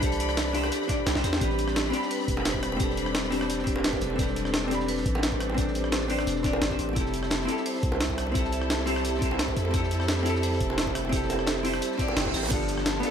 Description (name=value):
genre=liquid drum and bass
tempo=173 BPM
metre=4/4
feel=straight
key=A minor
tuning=A4 = 440 Hz
part: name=vintage hollow-body jazz guitar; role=accompaniment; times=0.0-13.1 s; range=B3 to B5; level=-30 LUFS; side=left 3 dB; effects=dub echo
part: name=clear symphonic string section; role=sustained chords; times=0.0-13.1 s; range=E3 to B5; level=-35 LUFS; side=left 2 dB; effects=sidechain pumping
part: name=vibraphone with hard mallets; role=arpeggios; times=0.0-13.1 s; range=G4 to G5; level=-34 LUFS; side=right 7 dB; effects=tape echo
part: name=long sustained 808-style bass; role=bass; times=0.0-13.0 s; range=E1 to F2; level=-32 LUFS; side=equal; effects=none
part: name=breakbeat sampler-style drum kit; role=drums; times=0.0-13.1 s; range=crash cymbal, hi-hat, rim click, snare drum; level=-31 LUFS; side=right 1 dB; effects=none
part: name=crunchy breakbeat drum kit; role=drums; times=0.0-13.1 s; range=hi-hat, snare drum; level=-39 LUFS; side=equal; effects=high-pass filter on hats, high-pass filter on snare, high-pass filter on room
part: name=electronic kick drum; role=drums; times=0.0-12.6 s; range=none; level=-31 LUFS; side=equal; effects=none
part: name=bongos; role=percussion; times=0.6-12.5 s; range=none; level=-36 LUFS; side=right 3 dB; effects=none
part: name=reverse cymbal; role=sound effects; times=11.9-12.5 s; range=none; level=-35 LUFS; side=right 5 dB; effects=none
room=light reverb, small room ambience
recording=none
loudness=-24 LUFS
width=side -8 dB against mid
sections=0.0-1.4 A section; 1.4-13.1 A section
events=drop 0.0-1.4, 1.4-13.1; drum fill 1.2; reverse cymbal 11.9-12.5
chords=0.0 C69; 1.4 Am11; 7.0 Fmaj9; 12.5 G9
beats=| 0.03 0.38 0.72 1.07 | 1.42 1.76 2.11 2.46 | 2.80 3.15 3.50 3.84 | 4.19 4.54 4.88 5.23 | 5.58 5.92 6.27 6.62 | 6.96 7.31 7.66 8.01 | 8.35 8.70 9.05 9.39 | 9.74 10.09 10.43 10.78 | 11.13 11.47 11.82 12.17 | 12.51 12.86